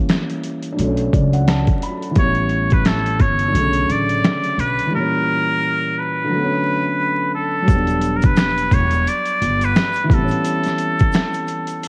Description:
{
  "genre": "lo-fi hip hop",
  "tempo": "87 BPM",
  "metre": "4/4",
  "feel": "swing 59% on 16ths",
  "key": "B minor",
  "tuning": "A4 = 440 Hz",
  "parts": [
    { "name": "felt-muted upright piano", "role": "accompaniment", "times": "0.0-11.9 s", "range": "A#2 to B5", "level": "-25 LUFS", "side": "equal", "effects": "low-pass filter, cassette tape" },
    { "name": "boom bap sampler-style drum kit", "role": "drums", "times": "0.1-11.9 s", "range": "finger snaps, hi-hat, kick drum, snare drum", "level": "-20 LUFS", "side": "equal", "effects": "overdrive, vintage 12-bit sampler grit" },
    { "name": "upright bass", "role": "bass", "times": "0.8-10.3 s", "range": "E1 to C#2", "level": "-24 LUFS", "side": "equal", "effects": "tube saturation" },
    { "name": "trumpet with straight mute", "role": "melody", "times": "2.2-11.9 s", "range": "A4 to D5", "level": "-22 LUFS", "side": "equal", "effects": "low-pass filter, cassette tape" },
    { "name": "egg shaker", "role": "percussion", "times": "7.7-11.9 s", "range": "none", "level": "-50 LUFS", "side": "equal", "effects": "none" }
  ],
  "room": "moderate spring reverb, RT60 2.3 s",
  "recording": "home recording on cassette, vinyl crackle",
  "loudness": "-18 LUFS",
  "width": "mono",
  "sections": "0.0-7.7 A section; 7.7-11.9 B section",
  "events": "break 4.9-7.7, 10.4-11.9",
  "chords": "0.0 A#dim7; 0.8 Bm9; 2.2 A9; 3.5 Bm9; 4.9 A#dim7; 6.3 Bm9; 7.7 Em7; 10.1 A7",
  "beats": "0.10 0.79 1.48 | 2.17 2.85 3.54 4.23 | 4.92 5.61 6.30 6.99 | 7.68 8.37 9.06 9.75 | 10.44 11.13 11.82"
}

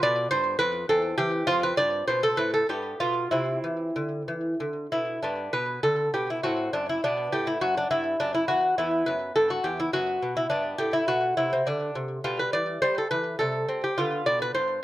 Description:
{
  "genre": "classical, baroque-style dance for lute",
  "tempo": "92-106 BPM",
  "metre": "3/4",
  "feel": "rubato",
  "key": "C major, G major from 5.2 s",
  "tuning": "A4 = 440 Hz",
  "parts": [
    { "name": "lute", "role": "solo", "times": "0.0-14.8 s", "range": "E2 to D5", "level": "-24 LUFS", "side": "equal", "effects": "slapback echo" }
  ],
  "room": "light reverb",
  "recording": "dry, close 1970s-style studio recording",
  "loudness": "-24 LUFS",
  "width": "side -15 dB against mid",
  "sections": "0.0-5.2 A section; 5.2-14.8 A section",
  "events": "none",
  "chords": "0.0 G7; 0.9 C/E; 1.5 F; 2.7 G7; 3.3 C; 5.2 G; 6.4 F#m7b5; 7.0 G; 8.8 Em; 9.9 B5/F#; 10.5 Gmaj13; 12.2 G/B; 13.4 C5; 14.0 G7",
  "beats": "0.32 0.90 | 1.48 2.08 2.68 | 3.31 3.95 4.60 | 5.23 5.84 6.44 | 7.03 7.62 8.20 | 8.79 9.36 9.94 | 10.51 11.09 11.66 | 12.23 12.81 13.39 | 13.97 14.55"
}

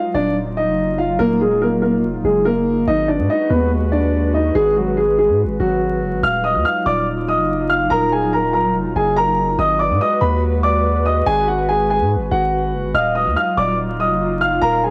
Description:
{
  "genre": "hip hop",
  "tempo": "143 BPM",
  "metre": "4/4",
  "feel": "half-time",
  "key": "Eb harmonic minor",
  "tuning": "A4 = 440 Hz",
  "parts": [
    { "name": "dark concert grand piano", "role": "melody", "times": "0.0-14.9 s", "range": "Gb3 to F6", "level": "-19 LUFS", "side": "equal", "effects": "tape echo" },
    { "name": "warbly tape-like pad", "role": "sustained chords", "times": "0.0-14.9 s", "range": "Gb3 to Cb5", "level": "-26 LUFS", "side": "equal", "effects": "chorus, built-in reverb, cassette tape" },
    { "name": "long sustained 808-style bass", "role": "bass", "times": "0.1-14.9 s", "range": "Eb1 to Ab2", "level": "-24 LUFS", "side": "equal", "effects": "none" },
    { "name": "warm velvety synth lead", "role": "second line", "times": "12.9-14.9 s", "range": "Eb5 to F5", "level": "-29 LUFS", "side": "equal", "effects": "chorus, cassette tape, tape echo" }
  ],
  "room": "moderate small room ambience, RT60 0.5 s",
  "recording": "home recording on cassette, vinyl crackle",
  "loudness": "-17 LUFS",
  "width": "mono",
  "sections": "0.0-6.2 A section; 6.2-14.9 B section",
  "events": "none",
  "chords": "0.0 Ebmadd9; 2.9 Abm7; 6.2 Ebmadd9; 9.6 Abm7; 12.9 Ebmadd9",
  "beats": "0.36 0.78 | 1.20 1.61 2.04 2.45 | 2.87 3.29 3.71 4.13 | 4.55 4.97 5.39 5.81 | 6.23 6.65 7.07 7.49 | 7.91 8.33 8.75 9.17 | 9.59 10.01 10.43 10.85 | 11.27 11.69 12.11 12.52 | 12.94 13.36 13.78 14.20 | 14.62"
}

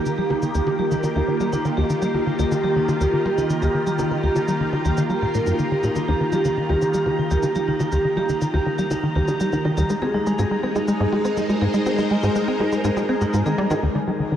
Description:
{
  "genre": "ambient, sequencer-driven space music",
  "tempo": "122 BPM",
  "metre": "4/4",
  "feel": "straight",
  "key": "unclear",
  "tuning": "A4 = 440 Hz",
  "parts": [
    { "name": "phased string machine", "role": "sustained chords", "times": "0.0-14.4 s", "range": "Eb3 to C5", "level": "-25 LUFS", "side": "left 1 dB", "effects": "ensemble chorus, phaser, shimmer reverb" },
    { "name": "bubbling stepped-filter texture", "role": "texture", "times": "0.0-14.4 s", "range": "Eb5 to Bb5", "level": "-33 LUFS", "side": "right 1 dB", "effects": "chorus, built-in reverb, shimmer reverb" },
    { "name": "tight sequencer bass", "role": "riff", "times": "0.1-14.4 s", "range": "Eb2 to C4", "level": "-23 LUFS", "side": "equal", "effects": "analog chorus, analog delay, shimmer reverb" },
    { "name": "cabasa and percussion blips", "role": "percussion", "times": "0.1-13.8 s", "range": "none", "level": "-34 LUFS", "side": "left 1 dB", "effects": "analog delay" },
    { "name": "vibraphone with hard mallets", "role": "arpeggios", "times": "0.2-14.4 s", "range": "Eb4 to Ab5", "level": "-24 LUFS", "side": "right 2 dB", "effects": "auto-pan, analog delay, shimmer reverb" }
  ],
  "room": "wet huge ambient reverb, RT60 7.4 s",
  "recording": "worn, warbling old tape, cassette tape, warbly pitch drift",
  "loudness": "-19 LUFS",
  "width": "side -10 dB against mid",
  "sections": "0.0-13.8 A section",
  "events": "filter sweep on analog synth bass 0.0-13.8",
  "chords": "0.0 Eb; 9.9 Abadd9; 13.8 Eb",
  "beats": "| 0.06 0.55 1.04 1.53 | 2.02 2.52 3.01 3.50 | 3.99 4.48 4.97 5.47 | 5.96 6.45 6.94 7.43 | 7.92 8.42 8.91 9.40 | 9.89 10.38 10.88 11.37 | 11.86 12.35 12.84 13.34 | 13.83 14.32"
}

